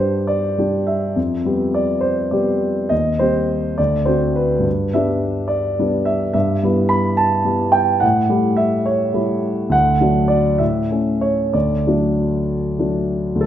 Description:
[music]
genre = classical, romantic character piece for solo piano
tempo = 62-72 BPM (dotted quarters)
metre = 6/8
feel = rubato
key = G major, D major from 6.3 s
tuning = A4 = 440 Hz
[part]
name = warm concert grand piano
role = solo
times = 0.0-13.5 s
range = D2 to B5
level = -16 LUFS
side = equal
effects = none
[sound]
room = wet recital hall reverb, RT60 1.3 s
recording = none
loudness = -16 LUFS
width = side -11 dB against mid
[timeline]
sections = 0.0-13.4 A section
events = none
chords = 0.0 G; 1.2 G7/F; 2.9 Cm/Eb; 3.8 D7; 4.7 G; 6.3 Em/G; 8.0 A7; 9.7 D; 10.6 A; 11.5 D

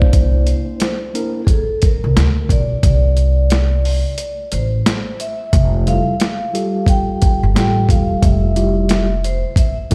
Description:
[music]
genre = hip hop, jazz-hop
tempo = 89 BPM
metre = 4/4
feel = swing 64% on 16ths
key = F major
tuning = A4 = 436 Hz
[part]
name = vibraphone with soft mallets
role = melody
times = 0.0-9.7 s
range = Ab4 to G5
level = -26 LUFS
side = equal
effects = none
[part]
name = mellow tine electric piano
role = accompaniment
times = 0.0-1.4, 5.9-9.9 s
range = G3 to C5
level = -24 LUFS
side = equal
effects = none
[part]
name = upright bass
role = bass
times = 0.0-9.9 s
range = E1 to D2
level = -18 LUFS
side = equal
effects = none
[part]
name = dusty soul sampler-style drum kit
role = drums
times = 0.0-9.9 s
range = hi-hat, kick drum, snare drum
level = -18 LUFS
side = equal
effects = overdrive
[sound]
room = small room ambience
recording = played on a big sound system in a bare room, stone room reverb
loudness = -16 LUFS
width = mono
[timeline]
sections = 0.0-9.9 A section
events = break 4.2-5.5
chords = 0.0 C9; 5.5 Fmaj9

